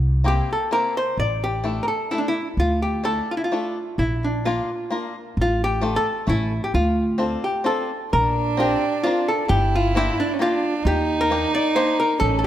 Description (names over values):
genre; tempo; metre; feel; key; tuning
musette waltz; 131 BPM; 3/4; rubato; D minor; A4 = 440 Hz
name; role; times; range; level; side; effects
upright bass; bass; 0.0-12.5 s; G1 to Eb2; -23 LUFS; equal; none
bluegrass banjo; accompaniment; 0.2-12.0 s; A3 to Bb4; -28 LUFS; left 3 dB; none
archtop guitar, miked and amplified; melody; 0.3-12.5 s; D4 to D5; -22 LUFS; equal; none
warm violin; second line; 8.1-12.5 s; C#4 to E4; -23 LUFS; right 4 dB; none
room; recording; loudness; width
moderate concert hall reverb, RT60 2.1 s; none; -19 LUFS; side -12 dB against mid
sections
0.0-8.1 A section; 8.1-12.5 B section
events
none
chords
0.0 C7; 1.2 Asus4; 2.6 Dsus2; 4.0 Bb; 5.4 Dm/A; 6.3 A; 6.7 Dm7; 8.1 Bbadd9; 9.5 Gm7; 10.9 Ebmaj7